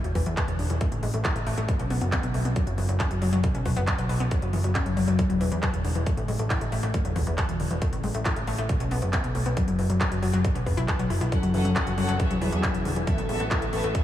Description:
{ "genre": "uplifting trance", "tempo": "137 BPM", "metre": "4/4", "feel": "straight", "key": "unclear", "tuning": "A4 = 442 Hz", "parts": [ { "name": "wide unison pluck", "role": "arpeggios", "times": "0.0-14.0 s", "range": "E2 to B4", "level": "-29 LUFS", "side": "left 3 dB", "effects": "cassette tape, sidechain pumping, diffuse ambient delay" }, { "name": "plucky analog bass", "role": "bass", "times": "0.0-13.9 s", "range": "E1 to E2", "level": "-27 LUFS", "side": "equal", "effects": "sidechain pumping" }, { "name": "big-room dance drum kit", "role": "drums", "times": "0.0-14.0 s", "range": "handclaps, hi-hat", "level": "-33 LUFS", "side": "equal", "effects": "overdrive" }, { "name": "electronic kick drum", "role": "drums", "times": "0.2-14.0 s", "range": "none", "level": "-28 LUFS", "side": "equal", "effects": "overdrive" }, { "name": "warm symphonic string section", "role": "sustained chords", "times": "11.3-14.0 s", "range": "E3 to F#5", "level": "-29 LUFS", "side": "equal", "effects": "sidechain pumping" } ], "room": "moderate huge ambient reverb, RT60 4.2 s", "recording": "dreamy mix soaked in reverb, small room ambience", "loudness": "-23 LUFS", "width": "side -12 dB against mid", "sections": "0.0-14.0 A section", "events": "none", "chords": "0.0 N.C.; 0.8 A5; 1.7 B5; 2.6 F#5; 3.4 B5; 4.3 F#5; 5.2 N.C.; 6.1 A5; 6.9 N.C.; 7.8 A5; 8.7 B5; 9.6 F#5; 10.4 B5; 11.3 F#m; 12.2 Eadd9; 13.1 Asus2", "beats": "0.37 | 0.81 1.25 1.69 2.12 | 2.56 3.00 3.44 3.88 | 4.31 4.75 5.19 5.63 | 6.07 6.50 6.94 7.38 | 7.82 8.26 8.69 9.13 | 9.57 10.01 10.45 10.88 | 11.32 11.76 12.20 12.63 | 13.07 13.51 13.95" }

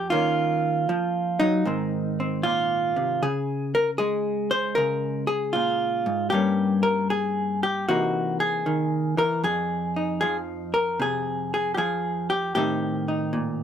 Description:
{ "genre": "solo jazz", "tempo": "77 BPM", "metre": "4/4", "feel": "swing 67% on 8ths", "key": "F minor", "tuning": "A4 = 440 Hz", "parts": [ { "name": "vintage hollow-body jazz guitar", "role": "solo", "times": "0.0-13.6 s", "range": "F2 to C5", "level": "-22 LUFS", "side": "equal", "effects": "none" } ], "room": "light reverb", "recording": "none", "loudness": "-22 LUFS", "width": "side -8 dB against mid", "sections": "0.0-13.6 A section", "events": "none", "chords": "0.1 Ebm9; 1.7 Ab69; 3.2 Dbmaj7; 6.3 Gdim; 7.9 C7alt; 9.4 Fm7; 12.5 Am7b5", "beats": "| 0.11 0.88 1.66 2.44 | 3.21 3.99 4.77 5.54 | 6.32 7.10 7.88 8.66 | 9.43 10.21 10.99 11.77 | 12.55 13.32" }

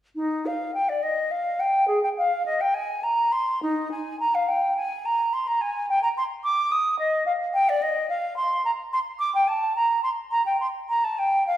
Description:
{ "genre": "classical, baroque-style fantasia for unaccompanied flute", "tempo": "107 BPM", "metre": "3/4", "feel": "rubato", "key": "Eb major, Bb major from 7.0 s", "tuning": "A4 = 438 Hz", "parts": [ { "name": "silver concert flute", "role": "solo", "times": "0.2-11.6 s", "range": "Eb4 to Eb6", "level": "-22 LUFS", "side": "equal", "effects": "none" } ], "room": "wet recital hall reverb, RT60 1.4 s", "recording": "heard from further back in the room", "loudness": "-22 LUFS", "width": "side -12 dB against mid", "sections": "0.1-11.6 A section", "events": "none", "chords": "none", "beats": "| 0.15 0.74 1.30 | 1.87 2.44 3.02 | 3.61 4.19 4.76 | 5.32 5.88 6.43 | 6.99 7.53 8.08 | 8.64 9.19 9.74 | 10.30 10.87 11.45" }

